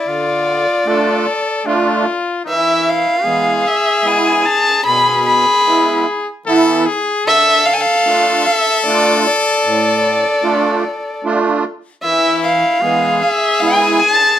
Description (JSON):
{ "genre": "klezmer", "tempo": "75 BPM", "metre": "3/4", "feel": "straight", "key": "unclear", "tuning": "A4 = 440 Hz", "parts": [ { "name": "dark violin", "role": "melody", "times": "0.0-14.4 s", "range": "D5 to B5", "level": "-14 LUFS", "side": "equal", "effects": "none" }, { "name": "brilliant trumpet", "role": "second line", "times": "0.0-14.4 s", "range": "E4 to A4", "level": "-17 LUFS", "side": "left 3 dB", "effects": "none" }, { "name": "musette accordion", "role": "accompaniment", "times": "0.1-14.0 s", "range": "A2 to F4", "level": "-18 LUFS", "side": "right 4 dB", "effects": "none" } ], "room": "moderate studio reverb, RT60 0.6 s", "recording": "none", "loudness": "-12 LUFS", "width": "side -10 dB against mid", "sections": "0.0-2.5 A section; 2.5-12.0 B section; 12.0-14.4 B section", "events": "none", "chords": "0.0 Dm; 2.5 E; 7.3 Dm; 12.0 E" }